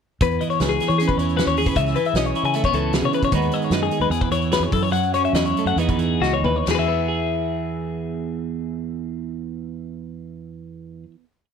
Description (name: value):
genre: math rock and midwest emo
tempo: 129-154 BPM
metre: 4/4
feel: straight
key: E major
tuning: A4 = 440 Hz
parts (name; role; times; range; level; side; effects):
- twelve-string electric guitar; accompaniment; 0.2-11.4 s; E2 to B4; -24 LUFS; right 9 dB; none
- twelve-string electric guitar; arpeggios; 0.2-11.1 s; F#4 to G#5; -23 LUFS; left 12 dB; spring reverb
- fingered electric bass; bass; 0.2-11.0 s; B1 to E3; -25 LUFS; equal; none
- loose indie drum kit; drums; 0.2-6.8 s; crash cymbal, hi-hat, kick drum, snare drum, toms; -26 LUFS; equal; none
room: little or no reverb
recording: none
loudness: -19 LUFS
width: side -7 dB against mid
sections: 0.2-6.7 A section; 6.7-10.4 final chord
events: slowing down 3.3-6.7; drum fill 6.2-6.7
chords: 0.2 E6; 1.8 C#m7; 3.3 G#m7/D#; 4.1 E6; 4.7 F#m7; 5.8 Emaj7; 6.7 E